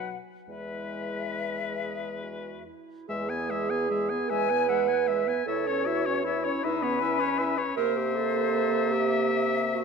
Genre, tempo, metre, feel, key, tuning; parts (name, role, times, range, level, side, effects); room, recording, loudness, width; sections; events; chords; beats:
classical, slow romantic movement for wind quintet; 45-54 BPM (dotted quarters); 6/8; rubato; E major; A4 = 439 Hz
concert flute; melody; 0.0-9.8 s; B4 to G#5; -31 LUFS; left 10 dB
clear oboe; second line; 0.0-9.8 s; B4 to G#5; -33 LUFS; left 5 dB
clear French horn; accompaniment; 0.0-9.8 s; F#3 to E4; -34 LUFS; left 3 dB
dark clarinet; accompaniment; 0.0-9.8 s; B3 to B4; -29 LUFS; right 9 dB
dark bassoon; bass; 0.0-9.8 s; E2 to C3; -34 LUFS; right 2 dB
moderate concert hall reverb, RT60 2.3 s; -25 LUFS; side -5 dB against mid
0.0-3.1 A section; 3.1-9.8 B section
0.5 E; 5.5 A69/E; 7.8 C7
| 0.48 1.80 | 3.09 4.29 | 5.46 6.62 | 7.76 8.93